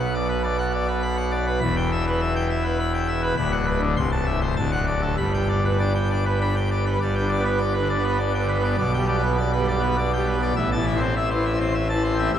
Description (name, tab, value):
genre	classical, organ toccata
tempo	101 BPM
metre	3/4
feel	straight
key	G major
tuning	A4 = 440 Hz
part	pipe organ, full organ	solo	0.0-12.4 s	C1 to C6	-20 LUFS	equal	none
room	wet cathedral reverb, RT60 4.6 s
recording	none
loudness	-20 LUFS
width	side -9 dB against mid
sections	0.0-7.0 A section; 7.0-12.4 B section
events	none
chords	0.0 Bm; 1.6 Em; 3.4 Bm/D; 4.0 Am/C; 4.6 D; 5.2 G; 8.8 G/B; 10.6 Am